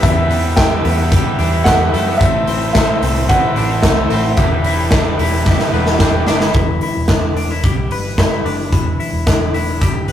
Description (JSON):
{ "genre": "jangly indie pop", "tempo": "110 BPM", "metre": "4/4", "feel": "straight", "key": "E minor", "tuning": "A4 = 440 Hz", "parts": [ { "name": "warm upright piano", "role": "melody", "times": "0.0-6.0 s", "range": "E5 to G5", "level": "-20 LUFS", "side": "right 1 dB", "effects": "none" }, { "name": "combo organ", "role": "accompaniment", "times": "0.0-6.5 s", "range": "E4 to B5", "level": "-24 LUFS", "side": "left 4 dB", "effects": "none" }, { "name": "raw garage guitar", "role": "accompaniment", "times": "0.0-6.6 s", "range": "E2 to E4", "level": "-22 LUFS", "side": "right 4 dB", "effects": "overdrive, spring reverb" }, { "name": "twelve-string electric guitar", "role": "arpeggios", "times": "0.0-10.1 s", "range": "A2 to B4", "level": "-22 LUFS", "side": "left 3 dB", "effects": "none" }, { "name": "vintage muted fingered electric bass", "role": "bass", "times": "0.0-10.1 s", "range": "E1 to F#2", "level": "-20 LUFS", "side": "equal", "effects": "none" }, { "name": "big rock drum kit", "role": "drums", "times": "0.0-10.1 s", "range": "hi-hat, kick drum, snare drum", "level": "-15 LUFS", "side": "equal", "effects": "none" }, { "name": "tambourine", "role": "percussion", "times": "0.0-6.4 s", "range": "none", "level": "-36 LUFS", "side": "right 5 dB", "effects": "none" } ], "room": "moderate studio reverb, RT60 0.6 s", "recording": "rough rehearsal-room recording, warm saturation", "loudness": "-12 LUFS", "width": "side -10 dB against mid", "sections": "0.0-6.5 A section; 6.5-10.1 B section", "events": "drum fill 5.5-6.5; transistor combo organ fill 5.5-6.5", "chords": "0.0 Em; 2.2 Am; 4.4 Em7", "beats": "| 0.04 0.58 1.12 1.66 | 2.21 2.75 3.29 3.83 | 4.38 4.92 5.46 6.00 | 6.55 7.09 7.63 8.18 | 8.72 9.27 9.81" }